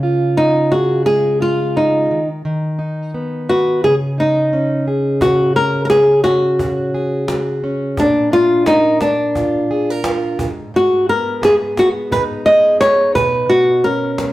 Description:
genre	acoustic pop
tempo	87 BPM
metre	4/4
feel	swing 60% on 16ths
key	unclear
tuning	A4 = 440 Hz
part	fingerpicked plugged-in steel-string acoustic guitar	accompaniment	0.0-14.3 s	Ab2 to B4	-20 LUFS	right 1 dB	none
part	flamenco guitar	melody	0.4-14.3 s	D4 to Eb5	-13 LUFS	equal	none
part	cajon	drums	5.2-14.3 s	none	-25 LUFS	equal	none
room	wet stone room reverb, RT60 1.1 s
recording	rough rehearsal-room recording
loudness	-13 LUFS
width	side -16 dB against mid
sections	0.0-5.2 A section; 5.2-14.3 B section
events	none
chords	0.0 Dbadd9; 2.1 B/D#; 3.8 Dbsus2; 5.2 Dbsus4; 8.0 Bb; 10.4 Abm; 13.2 Badd9

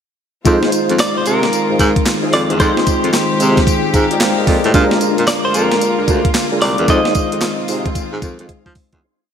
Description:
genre	R&B, new jack swing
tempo	112 BPM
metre	4/4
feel	swing 64% on 16ths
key	F dorian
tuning	A4 = 440 Hz
part	bell-like tine electric piano	accompaniment	0.4-9.0 s	Ab3 to Bb5	-19 LUFS	left 1 dB	medium stereo tremolo
part	clear studio string section	sustained chords	0.5-9.0 s	D3 to G4	-22 LUFS	left 2 dB	none
part	tonewheel organ	stabs	0.5-9.1 s	D4 to C5	-22 LUFS	right 2 dB	chorus vibrato, slow rotary speaker, analog delay
part	warm baritone saxophone	bass	0.5-9.0 s	C2 to F3	-18 LUFS	equal	none
part	clean 12-bit digital drum machine	drums	0.5-9.0 s	handclaps, hi-hat, kick drum, snare drum, tambourine	-18 LUFS	equal	none
part	direct-recorded clean electric guitar	melody	1.0-7.9 s	Bb4 to Eb5	-19 LUFS	equal	analog delay
room	wet lush hall reverb, RT60 2.3 s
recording	dreamy mix soaked in reverb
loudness	-12 LUFS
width	side -8 dB against mid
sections	0.5-9.0 chorus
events	fade-out 6.9-9.0; drum fill 8.5-9.0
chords	0.5 Fm7; 4.7 Bb7; 6.9 Fm7

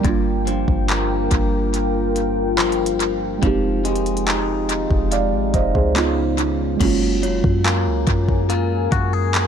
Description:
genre	contemporary R&B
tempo	71 BPM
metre	4/4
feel	straight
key	unclear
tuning	A4 = 440 Hz
part	muted felt-like synth keys	accompaniment	0.0-9.5 s	G3 to F5	-22 LUFS	right 6 dB	chorus, tape echo
part	deep dark ambient pad	sustained chords	0.0-9.5 s	Ab3 to Ab5	-26 LUFS	left 3 dB	chorus, built-in reverb, sidechain pumping
part	direct-recorded clean electric guitar	arpeggios	0.0-9.5 s	G2 to Ab4	-26 LUFS	left 9 dB	tape echo
part	clean 808-style bass	bass	0.0-9.5 s	F1 to Gb2	-23 LUFS	equal	none
part	smooth R&B drum kit	drums	0.0-9.5 s	crash cymbal, handclaps, hi-hat, kick drum	-22 LUFS	equal	tape echo
part	synth chime	texture	7.2-9.5 s	Bb4 to Db5	-32 LUFS	left 2 dB	ensemble chorus, tape echo
room	little or no reverb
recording	echo-heavy mix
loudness	-17 LUFS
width	side -8 dB against mid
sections	0.0-6.8 A section; 6.8-9.5 B section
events	none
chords	0.0 Gm7; 3.4 Fm9; 6.0 Db7; 6.8 Gbmaj9

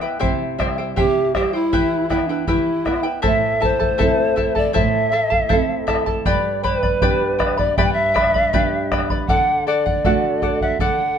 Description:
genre	andean folk, Andean ensemble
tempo	79 BPM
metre	2/4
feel	straight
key	unclear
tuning	A4 = 440 Hz
part	charango	accompaniment	0.0-11.2 s	E4 to B5	-22 LUFS	left 4 dB	none
part	nylon-string guitar	accompaniment	0.0-11.2 s	G2 to A4	-25 LUFS	right 5 dB	none
part	bombo	percussion	0.2-11.0 s	none	-23 LUFS	equal	none
part	mellow polished pan flute	melody	1.0-11.2 s	D4 to G5	-19 LUFS	equal	plate reverb
room	light reverb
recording	close, detailed microphones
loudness	-16 LUFS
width	side -8 dB against mid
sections	0.0-3.2 A section; 3.2-11.2 B section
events	none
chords	0.2 C; 1.7 Em; 3.2 Am; 6.3 G; 9.3 D

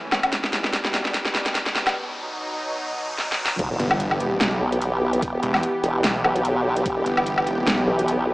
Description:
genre	heavy wobble dubstep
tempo	147 BPM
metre	4/4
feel	swing 55% on 16ths, half-time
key	E harmonic minor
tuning	A4 = 439 Hz
part	supersaw pad	sustained chords	0.0-8.3 s	E2 to G4	-26 LUFS	equal	sidechain pumping
part	riser and impact	sound effects	0.1-5.2 s	none	-35 LUFS	left 1 dB	none
part	dubstep drum kit	drums	0.1-8.2 s	crash cymbal, hi-hat, snare drum, woodblock	-23 LUFS	equal	small room ambience
part	electronic kick drum	drums	0.3-6.9 s	none	-32 LUFS	equal	small room ambience
part	formant-sweep wobble bass	bass	3.6-8.3 s	E1 to B1	-22 LUFS	equal	chorus, overdrive
part	snarling distorted saw bass	bass	3.8-7.9 s	E1 to B1	-25 LUFS	equal	distortion, overdrive
room	moderate lush hall reverb, RT60 1.9 s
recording	high-pass filter, small speaker sound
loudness	-20 LUFS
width	side -20 dB against mid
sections	0.0-3.6 A section; 3.6-8.3 B section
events	build-up 0.0-3.6; drum fill 0.0-2.0, 3.2-3.6; riser 0.1-3.6; break 2.0-3.6; drop 3.6-8.3; impact 3.6-5.2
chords	0.3 Em; 2.0 B; 3.6 Em

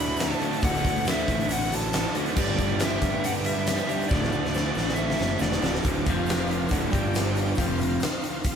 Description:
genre	classic rock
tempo	138 BPM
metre	4/4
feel	straight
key	D mixolydian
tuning	A4 = 440 Hz
part	smooth overdriven lead guitar	melody	0.0-5.7 s	D5 to B5	-31 LUFS	equal	none
part	reed electric piano	accompaniment	0.0-8.3 s	F4 to G5	-38 LUFS	left 3 dB	none
part	bright tonewheel organ	sustained chords	0.0-8.6 s	A3 to G5	-40 LUFS	equal	none
part	cranked stack guitar	riff	0.0-8.0 s	D2 to G4	-31 LUFS	right 7 dB	overdrive
part	overdriven semi-hollow guitar	riff	0.0-8.0 s	D2 to G3	-32 LUFS	left 4 dB	none
part	fuzz fingered electric bass	bass	0.0-8.0 s	D1 to G2	-30 LUFS	equal	overdrive
part	huge arena drum kit	drums	0.2-8.5 s	crash cymbal, hi-hat, kick drum, snare drum	-26 LUFS	equal	none
part	tube shaker	percussion	0.2-8.5 s	none	-47 LUFS	left 6 dB	none
room	light reverb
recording	band playing live in one room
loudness	-23 LUFS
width	side -7 dB against mid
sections	0.0-5.8 A section; 5.8-8.6 B section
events	drum fill 4.1-5.8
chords	0.0 D; 2.4 G; 4.1 D; 6.1 F5; 6.7 D; 6.9 G5; 7.6 F5

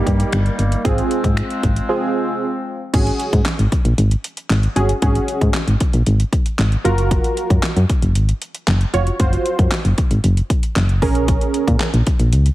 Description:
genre	dance-pop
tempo	115 BPM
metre	4/4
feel	straight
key	unclear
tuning	A4 = 441 Hz
part	warm analog keys	accompaniment	0.0-11.9 s	Bb3 to Db5	-21 LUFS	right 2 dB	chorus, sidechain pumping
part	clear woodwind section	sustained chords	0.0-2.9 s	Eb3 to C4	-25 LUFS	left 2 dB	sidechain pumping
part	solid FM bass	bass	0.0-12.5 s	F1 to Bb2	-16 LUFS	equal	sidechain pumping
part	pop drum kit	drums	0.1-12.5 s	crash cymbal, finger snaps, handclaps, hi-hat, kick drum, snare drum	-19 LUFS	equal	none
room	digital ambience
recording	heavily compressed radio sound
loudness	-15 LUFS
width	side -16 dB against mid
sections	0.0-2.9 A section; 2.9-12.5 B section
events	break 1.9-2.9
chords	0.0 Eb/G; 0.8 Fm/Ab; 2.9 Ab7sus4; 6.8 Gbmaj7; 11.0 Bbm7

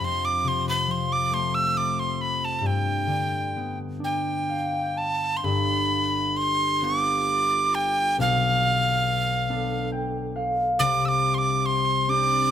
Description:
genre	celtic folk, Celtic slow air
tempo	42-47 BPM (dotted quarters)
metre	6/8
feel	rubato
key	G mixolydian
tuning	A4 = 444 Hz
part	breathy bright mid whistle	melody	0.0-12.5 s	F5 to E6	-23 LUFS	right 1 dB	none
part	concert harp	accompaniment	0.0-12.5 s	G1 to A5	-26 LUFS	left 2 dB	none
room	light reverb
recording	close, detailed microphones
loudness	-22 LUFS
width	side -10 dB against mid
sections	0.0-5.4 A section; 5.4-12.5 A section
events	harp fill 4.0-5.4, 9.5-10.8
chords	0.0 F; 2.6 G; 8.2 Bm7b5; 10.8 Csus2

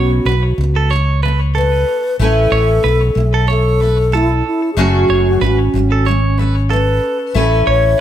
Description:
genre	pop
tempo	93 BPM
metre	4/4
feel	swing 55% on 16ths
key	A major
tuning	A4 = 440 Hz
part	wooden-headed alto flute	melody	0.0-8.0 s	E4 to C#5	-17 LUFS	left 1 dB	none
part	picked steel-string acoustic guitar	accompaniment	0.0-8.0 s	F#2 to B4	-19 LUFS	equal	double-tracked left and right
part	direct-recorded clean electric guitar	arpeggios	0.0-7.8 s	A4 to C#5	-21 LUFS	right 6 dB	ping-pong delay
part	mellow fretless electric bass	bass	0.0-7.9 s	F#1 to C#2	-14 LUFS	equal	none
room	light reverb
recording	none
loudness	-12 LUFS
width	side -11 dB against mid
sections	0.0-8.0 A section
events	none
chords	0.0 Bsus2; 2.2 Aadd9; 4.8 F#madd9; 7.3 Aadd9

